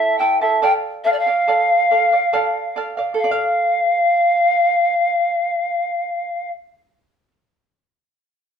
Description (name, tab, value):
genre	andean folk, Andean ensemble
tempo	70 BPM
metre	3/4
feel	straight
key	D minor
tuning	A4 = 440 Hz
part	breathy reedy pan flute	melody	0.0-6.5 s	D5 to G5	-16 LUFS	left 1 dB	none
part	charango	accompaniment	0.0-7.3 s	E4 to A5	-21 LUFS	right 4 dB	none
room	moderate studio reverb, RT60 0.7 s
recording	band playing live in one room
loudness	-15 LUFS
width	side -7 dB against mid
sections	0.0-3.2 A section; 3.2-5.8 B section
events	none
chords	0.0 A; 0.6 Dm